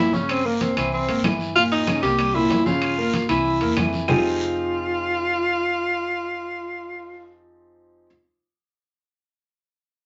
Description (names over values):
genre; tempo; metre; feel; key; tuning
Afro-Cuban jazz; 190 BPM; 4/4; straight; F minor; A4 = 439 Hz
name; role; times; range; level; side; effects
warm tenor saxophone; melody; 0.0-7.4 s; Bb3 to G4; -25 LUFS; equal; none
warm baby grand piano; accompaniment; 0.0-8.1 s; Bb2 to Bb4; -27 LUFS; equal; none
woody fretless electric bass; bass; 0.0-8.1 s; F1 to F2; -35 LUFS; equal; none
congas; percussion; 0.1-4.2 s; none; -31 LUFS; equal; none
guiro; percussion; 0.1-4.2 s; none; -39 LUFS; equal; none
claves; percussion; 0.3-4.2 s; none; -33 LUFS; equal; none
timbales; percussion; 0.3-4.2 s; none; -32 LUFS; equal; none
room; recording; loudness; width
wet studio reverb, RT60 0.6 s; nothing above 7.8 kHz; -22 LUFS; mono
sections
0.0-4.1 A section; 4.1-6.6 B section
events
none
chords
0.0 Gdim; 0.9 C7; 1.6 Gdim; 2.8 Gm7b5; 3.5 C7; 4.1 Fm9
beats
| 0.29 0.61 0.92 1.24 | 1.56 1.87 2.19 2.50 | 2.82 3.14 3.45 3.77 | 4.08 4.40 4.72 5.03 | 5.35 5.67 5.98 6.30